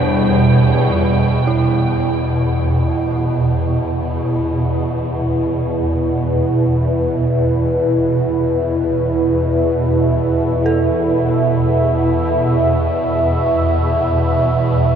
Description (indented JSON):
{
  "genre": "ambient",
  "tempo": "free time",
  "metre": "none",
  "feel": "none",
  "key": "E minor",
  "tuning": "A4 = 440 Hz",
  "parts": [
    { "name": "dark analog pad", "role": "sustained chords", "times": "0.0-15.0 s", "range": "E2 to E5", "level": "-18 LUFS", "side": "right 1 dB", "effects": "chorus" },
    { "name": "dark detuned synth bell", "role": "arpeggios", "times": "0.0-15.0 s", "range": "E4 to A4", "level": "-28 LUFS", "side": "right 3 dB", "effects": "chorus, diffuse ambient delay" },
    { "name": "swarming drone", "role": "drone", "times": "0.0-15.0 s", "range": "E2 to B2", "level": "-16 LUFS", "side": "right 1 dB", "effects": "built-in reverb" },
    { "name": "icy glass pad", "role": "texture", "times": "0.0-1.5 s", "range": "G5", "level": "-29 LUFS", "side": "right 5 dB", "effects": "chorus, built-in reverb" }
  ],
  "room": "moderate huge ambient reverb, RT60 8.6 s",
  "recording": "dark, warm production",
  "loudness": "-14 LUFS",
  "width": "side -8 dB against mid",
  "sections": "0.0-1.5 A section; 1.5-15.0 B section",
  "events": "filter sweep on synth drone 0.0-1.5",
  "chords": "0.0 Gsus4/E; 1.5 E5"
}